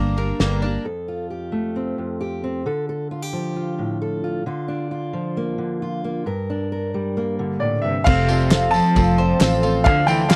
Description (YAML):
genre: indie folk with a building arrangement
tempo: 133 BPM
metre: 4/4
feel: straight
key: F major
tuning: A4 = 440 Hz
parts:
  - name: bright upright piano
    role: melody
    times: 0.0-0.4, 7.6-10.4 s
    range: D5 to Bb5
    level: -24 LUFS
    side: equal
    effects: none
  - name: picked twelve-string acoustic guitar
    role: accompaniment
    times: 0.0-0.9, 8.1-10.4 s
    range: G2 to Bb4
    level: -29 LUFS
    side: equal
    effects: none
  - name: mandolin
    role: arpeggios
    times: 0.0-0.9, 8.1-10.4 s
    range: Bb3 to C5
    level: -29 LUFS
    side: equal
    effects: none
  - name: fingered electric bass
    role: bass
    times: 0.0-0.8, 8.1-10.4 s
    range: F1 to D2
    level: -24 LUFS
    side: equal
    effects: none
  - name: loose indie drum kit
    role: drums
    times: 0.4-0.5, 8.1-10.4 s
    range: crash cymbal, kick drum, snare drum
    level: -20 LUFS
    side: equal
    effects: none
  - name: fingerpicked steel-string acoustic guitar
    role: accompaniment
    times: 0.8-8.1 s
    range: F2 to Bb4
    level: -26 LUFS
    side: equal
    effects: none
  - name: rich cello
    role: second line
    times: 7.6-10.4 s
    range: Bb2 to F3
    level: -24 LUFS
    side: equal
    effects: none
  - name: felt-muted upright piano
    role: accompaniment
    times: 8.1-10.4 s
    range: F1 to D5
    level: -30 LUFS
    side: equal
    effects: none
  - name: mellow brass ensemble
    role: sustained chords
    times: 8.1-10.4 s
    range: F3 to A4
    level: -32 LUFS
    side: equal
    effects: none
  - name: tambourine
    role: percussion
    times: 8.3-10.4 s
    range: none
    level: -38 LUFS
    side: equal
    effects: none
  - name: group handclap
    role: percussion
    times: 8.5-10.4 s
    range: none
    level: -30 LUFS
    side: equal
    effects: none
room: little or no reverb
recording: dry, close 1970s-style studio recording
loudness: -22 LUFS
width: mono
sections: 0.9-8.1 A section; 8.1-10.4 B section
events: none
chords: 0.0 Gm; 0.9 F; 2.7 Dm; 4.5 Bb/D; 6.3 Gm; 8.1 F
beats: 0.40 | 0.85 1.30 1.75 2.20 | 2.65 3.10 3.55 4.01 | 4.46 4.91 5.36 5.81 | 6.26 6.71 7.17 7.62 | 8.07 8.52 8.96 9.41 | 9.86 10.31